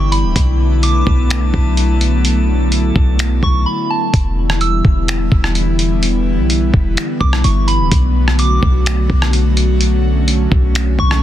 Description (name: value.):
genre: hip hop, atmospheric cloud-rap.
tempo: 127 BPM.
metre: 4/4.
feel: half-time.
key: E dorian.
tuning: A4 = 442 Hz.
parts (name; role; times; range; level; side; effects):
soft synth bell; melody; 0.0-11.2 s; A5 to E6; -22 LUFS; right 3 dB; chorus, phaser, low-pass filter, ping-pong delay.
airy breathy pad; sustained chords; 0.0-11.2 s; D3 to F#4; -18 LUFS; left 1 dB; chorus, sidechain pumping.
warm 808-style bass; bass; 0.0-11.2 s; D1 to B1; -14 LUFS; equal; none.
drifting glass-harmonics texture; texture; 0.0-4.1 s; D4 to A5; -29 LUFS; left 3 dB; chorus, built-in reverb.
lo-fi sampler-style drum kit; drums; 0.1-11.2 s; finger snaps, hi-hat, kick drum, rim click; -16 LUFS; equal; soft clipping on snare.
room: digital ambience.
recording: dense, heavily limited modern master.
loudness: -12 LUFS.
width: side -12 dB against mid.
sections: 0.0-4.1 A section; 4.1-11.2 B section.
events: break 3.7-4.1.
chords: 0.4 Bm7; 4.1 Em7; 7.9 Bm7.